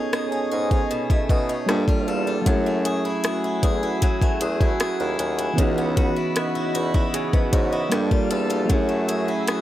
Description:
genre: contemporary R&B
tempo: 77 BPM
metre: 4/4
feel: straight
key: F# dorian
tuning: A4 = 438 Hz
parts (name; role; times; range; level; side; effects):
- soft electric-piano-like synth keys; accompaniment; 0.0-9.6 s; E3 to D#5; -25 LUFS; right 2 dB; chorus
- chorused pulse-width pad; sustained chords; 0.0-9.6 s; A3 to B5; -30 LUFS; equal; none
- picked swing-style acoustic guitar; arpeggios; 0.0-9.6 s; B2 to A4; -28 LUFS; left 2 dB; none
- smooth R&B drum kit; drums; 0.1-9.6 s; hi-hat, kick drum, rim click; -22 LUFS; equal; none
- clear bassoon; bass; 0.5-9.3 s; C#2 to B2; -26 LUFS; left 1 dB; none
room: digital ambience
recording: none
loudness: -20 LUFS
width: side -13 dB against mid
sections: 0.0-9.6 A section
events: break 0.0-2.5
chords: 0.0 B13; 1.7 Gm9; 2.5 F#m9; 5.6 C#m11; 7.9 Gm9; 8.7 F#m9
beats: 0.13 0.91 1.69 | 2.46 3.24 4.02 4.80 | 5.58 6.36 7.14 7.92 | 8.70 9.48

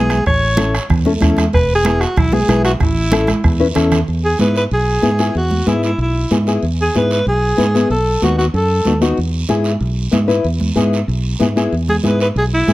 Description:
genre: latin, cumbia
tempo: 188 BPM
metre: 4/4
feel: straight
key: E major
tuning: A4 = 440 Hz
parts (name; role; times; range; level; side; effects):
- breathy alto saxophone; melody; 0.0-9.0, 11.9-12.7 s; E4 to C#5; -18 LUFS; equal; none
- nylon-string guitar; accompaniment; 0.0-12.7 s; B3 to B4; -17 LUFS; left 3 dB; none
- fingered electric bass; bass; 0.0-12.7 s; E1 to G#2; -18 LUFS; equal; none
- bombo; percussion; 0.1-4.1 s; none; -18 LUFS; right 1 dB; none
- congas; percussion; 0.1-12.7 s; none; -21 LUFS; right 2 dB; none
- guiro; percussion; 0.1-12.7 s; none; -29 LUFS; right 7 dB; none
room: light reverb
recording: close, detailed microphones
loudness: -13 LUFS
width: side -17 dB against mid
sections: 0.0-4.1 A section; 4.1-12.7 B section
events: drum fill 3.3-4.1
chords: 0.3 A; 1.5 E; 2.8 A; 4.1 E; 7.9 B7; 9.2 E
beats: | 0.26 0.58 0.90 1.22 | 1.53 1.85 2.17 2.49 | 2.81 3.12 3.44 3.76 | 4.08 4.40 4.72 5.04 | 5.35 5.67 5.99 6.31 | 6.63 6.95 7.27 7.58 | 7.90 8.22 8.54 8.86 | 9.18 9.49 9.81 10.13 | 10.45 10.77 11.09 11.40 | 11.72 12.04 12.36 12.68

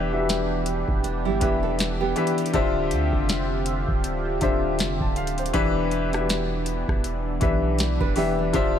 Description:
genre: contemporary R&B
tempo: 80 BPM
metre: 4/4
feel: swing 58% on 16ths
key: unclear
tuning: A4 = 441 Hz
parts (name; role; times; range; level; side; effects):
- warm grand piano; accompaniment; 0.0-8.8 s; D3 to A5; -25 LUFS; left 3 dB; none
- warm analog pad; sustained chords; 0.0-8.8 s; D3 to E5; -30 LUFS; right 2 dB; chorus
- long sustained 808-style bass; bass; 0.0-8.8 s; D1 to D2; -28 LUFS; right 1 dB; none
- booming analog drum machine; drums; 0.3-8.8 s; hi-hat, kick drum, rim click, snare drum; -26 LUFS; right 1 dB; none
- nylon-string guitar; arpeggios; 1.0-2.5, 8.0-8.7 s; G3 to B4; -28 LUFS; right 8 dB; ping-pong delay
room: little or no reverb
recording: none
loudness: -21 LUFS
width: side -9 dB against mid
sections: 0.0-8.8 A section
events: none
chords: 0.0 Em7; 2.5 Dm11; 5.5 Em7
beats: 0.29 1.04 1.79 | 2.54 3.29 4.04 4.79 | 5.54 6.29 7.04 7.79 | 8.54

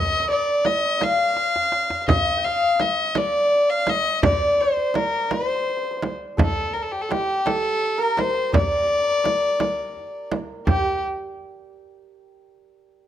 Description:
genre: Persian modal ensemble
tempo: 56 BPM (dotted quarters)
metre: 6/8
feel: straight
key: D dastgah shur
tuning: A4 = 436 Hz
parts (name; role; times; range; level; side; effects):
- warm violin; melody; 0.0-11.0 s; G4 to F5; -22 LUFS; left 2 dB; none
- santur; second line; 0.0-11.0 s; G4 to G5; -26 LUFS; right 1 dB; none
- frame drum; percussion; 0.6-11.0 s; none; -24 LUFS; right 3 dB; none
- tombak; percussion; 0.7-11.0 s; none; -26 LUFS; left 1 dB; none
room: light reverb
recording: close, detailed microphones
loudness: -19 LUFS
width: side -11 dB against mid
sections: 0.0-10.7 A section; 10.7-12.8 B section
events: drum fill 1.4-2.1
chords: none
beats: 1.01 | 2.08 3.16 | 4.23 5.31 | 6.38 7.46 | 8.53 9.61 | 10.68

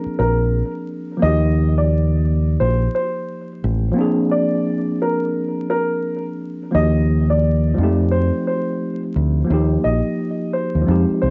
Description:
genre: hip hop, boom-bap hip-hop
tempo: 87 BPM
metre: 4/4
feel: swing 62% on 16ths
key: Eb major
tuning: A4 = 440 Hz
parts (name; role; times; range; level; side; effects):
- dark upright piano; melody; 0.0-11.3 s; Bb4 to Eb5; -26 LUFS; equal; high-pass filter, low-pass filter, tape echo
- mellow tine electric piano; accompaniment; 0.0-11.3 s; F3 to Ab4; -24 LUFS; equal; cassette tape, high-pass filter, low-pass filter
- deep dub fingered electric bass; bass; 0.1-11.3 s; A1 to F2; -19 LUFS; equal; none
room: light reverb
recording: home recording on cassette, vinyl crackle, nothing above 7.7 kHz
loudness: -19 LUFS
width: mono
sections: 0.0-6.7 A section; 6.7-11.3 B section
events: break 4.0-6.7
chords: 0.0 Bb7; 1.2 Ebmaj7; 4.0 Bb7; 6.7 Ebmaj7; 7.8 F7; 9.5 Eb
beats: 0.53 | 1.22 1.91 2.60 3.29 | 3.98 4.67 5.36 6.05 | 6.74 7.43 8.12 8.81 | 9.50 10.19 10.88

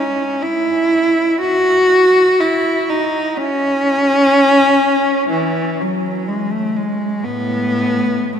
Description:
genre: classical, free, expressive piece for unaccompanied cello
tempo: 61 BPM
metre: 4/4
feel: rubato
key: E major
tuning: A4 = 440 Hz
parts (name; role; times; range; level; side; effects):
- warm cello; solo; 0.0-8.4 s; A2 to F#4; -13 LUFS; equal; none
room: wet cathedral reverb, RT60 5.7 s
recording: none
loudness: -13 LUFS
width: side -8 dB against mid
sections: 0.0-8.4 A section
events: none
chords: none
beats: 0.44 | 1.41 2.40 3.37 4.32 | 5.29 6.29 7.26 8.34

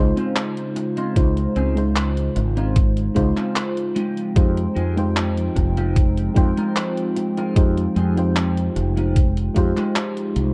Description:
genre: vaporwave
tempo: 75 BPM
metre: 4/4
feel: straight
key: F minor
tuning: A4 = 441 Hz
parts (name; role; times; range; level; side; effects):
- mellow FM electric piano; accompaniment; 0.0-10.5 s; Ab3 to G5; -26 LUFS; equal; subtle chorus, tape echo
- warbly tape-like pad; sustained chords; 0.2-10.5 s; Db3 to G5; -32 LUFS; equal; chorus, built-in reverb
- mellow fretless electric bass; bass; 0.0-10.5 s; F1 to F2; -24 LUFS; equal; none
- clean electric guitar; riff; 0.2-10.4 s; Ab3 to Bb4; -32 LUFS; equal; analog chorus, vintage 12-bit sampler grit, tape echo
- detuned 8-bit digital drum machine; drums; 0.2-10.5 s; handclaps, hi-hat; -30 LUFS; equal; none
- electronic kick drum; drums; 1.2-9.7 s; none; -20 LUFS; equal; none
room: light reverb, digital ambience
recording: dark, warm production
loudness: -20 LUFS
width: mono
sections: 0.0-10.5 A section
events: none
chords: 0.0 Dbmaj9; 4.0 Fm9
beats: 0.36 | 1.16 1.96 2.76 3.56 | 4.36 5.16 5.96 6.76 | 7.56 8.36 9.16 9.96

